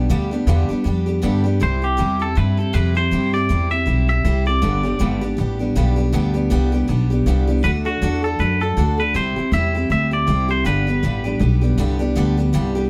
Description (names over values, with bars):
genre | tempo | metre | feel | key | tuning
rock | 159 BPM | 4/4 | swing 58% on 8ths | G major | A4 = 440 Hz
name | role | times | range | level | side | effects
picked steel-string acoustic guitar | accompaniment | 0.0-12.9 s | G2 to A4 | -24 LUFS | equal | none
upright bass | bass | 0.0-12.9 s | G1 to G2 | -21 LUFS | equal | none
twangy electric guitar | melody | 1.6-12.9 s | F#4 to E5 | -25 LUFS | equal | none
room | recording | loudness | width
moderate studio reverb, RT60 0.7 s | band playing live in one room | -19 LUFS | mono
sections
0.0-12.9 A section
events
none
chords
0.0 G; 1.6 C; 4.6 G; 7.6 D; 9.2 C; 10.7 G